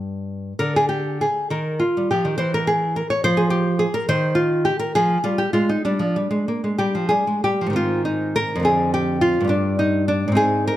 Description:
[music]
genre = classical, baroque-style dance for nylon-string guitar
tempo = 61-72 BPM (dotted quarters)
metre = 6/8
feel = rubato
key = unclear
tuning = A4 = 440 Hz
[part]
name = nylon-string guitar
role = solo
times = 0.0-10.8 s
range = F2 to Db5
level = -18 LUFS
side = equal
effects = none
[sound]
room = light reverb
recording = none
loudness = -18 LUFS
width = side -13 dB against mid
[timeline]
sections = 0.0-7.8 A section; 7.8-10.8 B section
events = none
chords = 0.0 G; 0.6 N.C.; 1.5 Eb; 2.4 N.C.; 5.0 Fm9; 5.9 G5; 7.8 Ab; 8.7 Fm69; 9.5 G5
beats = | 0.59 1.50 | 2.38 3.25 | 4.09 4.96 | 5.86 6.80 | 7.76 8.65 | 9.52 10.40

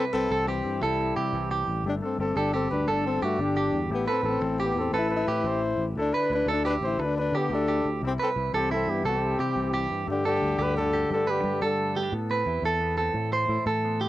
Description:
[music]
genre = highlife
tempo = 117 BPM (dotted quarters)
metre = 12/8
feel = straight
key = G major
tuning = A4 = 440 Hz
[part]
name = warm trumpet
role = melody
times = 0.0-12.0 s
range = E4 to C5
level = -30 LUFS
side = left 1 dB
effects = cassette tape, analog delay
[part]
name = breathy tenor saxophone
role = second line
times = 0.0-12.0 s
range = D3 to E4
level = -30 LUFS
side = left 3 dB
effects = cassette tape
[part]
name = semi-hollow electric guitar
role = accompaniment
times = 0.0-14.1 s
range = G2 to G4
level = -36 LUFS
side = left 4 dB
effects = cassette tape
[part]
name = clean electric guitar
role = arpeggios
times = 0.0-14.1 s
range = E4 to C5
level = -28 LUFS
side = right 3 dB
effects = cassette tape
[part]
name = fingered electric bass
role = bass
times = 0.1-14.1 s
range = G1 to G3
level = -31 LUFS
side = equal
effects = none
[sound]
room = light reverb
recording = home recording on cassette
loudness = -24 LUFS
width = side -15 dB against mid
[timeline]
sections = 0.0-10.1 A section; 10.1-14.1 B section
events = none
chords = 0.0 C; 1.9 Gsus2; 3.9 Amadd9; 6.0 Dsus2; 8.0 C; 10.1 Gsus2; 12.1 Amadd9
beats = 0.31 0.82 1.34 | 1.85 2.37 2.88 3.40 | 3.91 4.42 4.94 5.45 | 5.97 6.48 7.00 7.51 | 8.02 8.54 9.05 9.57 | 10.08 10.59 11.11 11.62 | 12.13 12.65 13.16 13.68

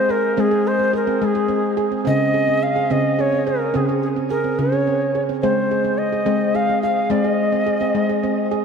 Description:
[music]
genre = world meditative, meditative tuned percussion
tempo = 71 BPM (dotted quarters)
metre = 6/8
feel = straight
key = Ab major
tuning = A4 = 440 Hz
[part]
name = mellow reedy Native American-style cedar flute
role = melody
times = 0.0-8.5 s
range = Ab4 to F5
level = -20 LUFS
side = left 1 dB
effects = shimmer reverb, dub echo
[part]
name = handpan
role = arpeggios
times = 0.0-8.6 s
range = Db3 to Ab4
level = -19 LUFS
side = right 1 dB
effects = shimmer reverb
[sound]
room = wet plate reverb, RT60 2.8 s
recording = echo-heavy mix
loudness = -17 LUFS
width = side -6 dB against mid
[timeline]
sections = 0.0-8.6 A section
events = none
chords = 0.0 Ab; 2.1 Db5; 5.4 Ab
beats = | 0.38 1.22 | 2.06 2.90 | 3.74 4.58 | 5.43 6.27 | 7.11 7.95

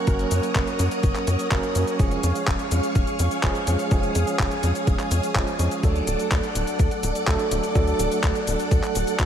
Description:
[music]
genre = italo disco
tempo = 125 BPM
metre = 4/4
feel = straight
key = unclear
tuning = A4 = 441 Hz
[part]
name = string machine, full ensemble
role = sustained chords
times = 0.0-9.3 s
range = G#4 to D#6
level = -27 LUFS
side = equal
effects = ensemble chorus
[part]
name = overdriven tine electric piano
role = stabs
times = 0.0-9.3 s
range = E#3 to A#4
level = -27 LUFS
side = right 4 dB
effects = fast tremolo, low-pass filter, tape echo
[part]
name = tight sequencer bass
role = bass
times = 0.1-9.3 s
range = D1 to F#2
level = -24 LUFS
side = left 1 dB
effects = none
[part]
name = detuned 8-bit digital drum machine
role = drums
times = 0.1-9.3 s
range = cabasa, handclaps, hi-hat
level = -29 LUFS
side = left 1 dB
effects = none
[part]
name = electronic kick drum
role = drums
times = 0.1-9.3 s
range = none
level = -23 LUFS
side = equal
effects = none
[sound]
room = light reverb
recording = none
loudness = -20 LUFS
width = side -9 dB against mid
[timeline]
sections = 0.0-9.3 A section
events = none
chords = 0.0 F#; 2.0 C#/E#; 5.8 D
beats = | 0.07 0.56 1.03 1.51 | 2.00 2.48 2.96 3.44 | 3.92 4.39 4.88 5.36 | 5.83 6.32 6.79 7.28 | 7.75 8.23 8.71 9.20

